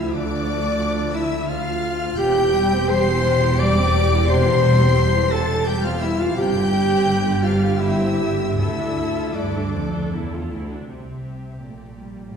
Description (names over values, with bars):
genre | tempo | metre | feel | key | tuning
cinematic | 76-91 BPM | 3/4 | rubato | unclear | A4 = 439 Hz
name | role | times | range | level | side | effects
rich studio violin section | melody | 0.0-12.4 s | D5 to D7 | -31 LUFS | left 3 dB | none
clear clarinet | second line | 0.0-10.1 s | D4 to D5 | -27 LUFS | left 4 dB | none
mellow hollow concert flute | second line | 0.0-10.1 s | D5 to D6 | -29 LUFS | left 3 dB | none
rich symphonic violin section | second line | 0.0-12.4 s | F4 to D6 | -30 LUFS | left 1 dB | none
rich symphonic viola section | accompaniment | 0.0-12.4 s | C3 to A4 | -26 LUFS | right 1 dB | none
mellow French horn section | sustained chords | 0.0-10.1 s | D4 to D5 | -24 LUFS | left 1 dB | none
rich symphonic cello section | bass | 0.0-12.4 s | D2 to C3 | -26 LUFS | right 1 dB | none
warm symphonic double bass section | bass | 0.0-12.4 s | E1 to D2 | -24 LUFS | right 1 dB | none
room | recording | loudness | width
wet scoring stage reverb, RT60 1.5 s | heard from further back in the room | -17 LUFS | side -7 dB against mid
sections
0.0-10.9 A section; 10.9-12.4 B section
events
none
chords
0.0 Dm; 2.2 C/E; 6.4 Gsus4; 8.6 Dmadd9; 10.9 C